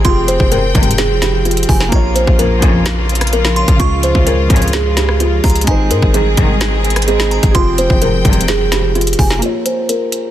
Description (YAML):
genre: hip hop, trap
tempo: 128 BPM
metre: 4/4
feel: half-time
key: unclear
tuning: A4 = 438 Hz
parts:
  - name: kalimba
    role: melody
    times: 0.0-10.3 s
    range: Eb4 to C5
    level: -17 LUFS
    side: right 1 dB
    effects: low-pass filter, ping-pong delay
  - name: delicate synth tine bell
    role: second line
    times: 0.0-9.4 s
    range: Ab5 to Db6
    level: -24 LUFS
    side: right 3 dB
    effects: chorus, tremolo, ping-pong delay
  - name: felt-muted upright piano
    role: accompaniment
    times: 0.0-10.3 s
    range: Db3 to Db5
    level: -24 LUFS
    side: right 4 dB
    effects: low-pass filter
  - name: bright symphonic string section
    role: sustained chords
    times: 0.0-9.4 s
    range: Db3 to G5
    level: -21 LUFS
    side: equal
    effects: none
  - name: hard-hitting 808-style bass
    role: bass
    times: 0.0-9.4 s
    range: F1 to Ab2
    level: -16 LUFS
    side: equal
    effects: none
  - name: trap drum kit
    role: drums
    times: 0.0-10.2 s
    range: hi-hat, kick drum, rim click, snare drum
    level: -15 LUFS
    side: equal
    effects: none
  - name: dark chamber string section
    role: stabs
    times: 0.5-8.7 s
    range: Ab1 to Eb3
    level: -21 LUFS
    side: left 2 dB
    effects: ping-pong delay
room: small room ambience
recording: dense, heavily limited modern master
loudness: -10 LUFS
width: side -12 dB against mid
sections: 0.0-9.4 A section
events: none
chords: 0.0 Fmadd9; 1.9 Bbm; 3.8 Db; 5.7 Ab; 7.5 Fmadd9; 9.4 Bbm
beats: | 0.05 0.52 0.98 1.45 | 1.92 2.39 2.86 3.33 | 3.80 4.27 4.74 5.20 | 5.67 6.14 6.61 7.08 | 7.55 8.02 8.48 8.95 | 9.42 9.89